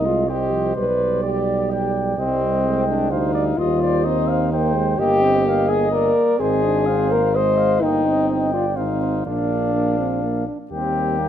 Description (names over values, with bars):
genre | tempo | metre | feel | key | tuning
classical, brass quintet | 127 BPM | 3/4 | straight | C minor, Eb major from 5.0 s | A4 = 441 Hz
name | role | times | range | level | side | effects
mellow cornet | melody | 0.0-11.3 s | G4 to G5 | -26 LUFS | left 8 dB | none
mellow flugelhorn | second line | 0.0-11.3 s | Bb3 to Eb5 | -25 LUFS | right 6 dB | none
clear French horn | accompaniment | 0.0-11.3 s | Bb3 to C5 | -21 LUFS | left 3 dB | none
warm trombone | accompaniment | 0.0-11.3 s | F3 to D4 | -26 LUFS | right 3 dB | none
warm tuba | bass | 0.0-11.3 s | G1 to Eb2 | -24 LUFS | right 4 dB | none
room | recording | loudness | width
light reverb | close, detailed microphones | -17 LUFS | side -10 dB against mid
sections
0.0-10.7 A section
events
none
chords
0.0 Cm; 0.8 G/B; 2.2 Cm; 3.6 Cm/Eb; 5.0 Eb/G; 6.4 Ab; 7.8 Eb/G; 8.8 Fm/Ab; 9.3 Bb; 10.7 Eb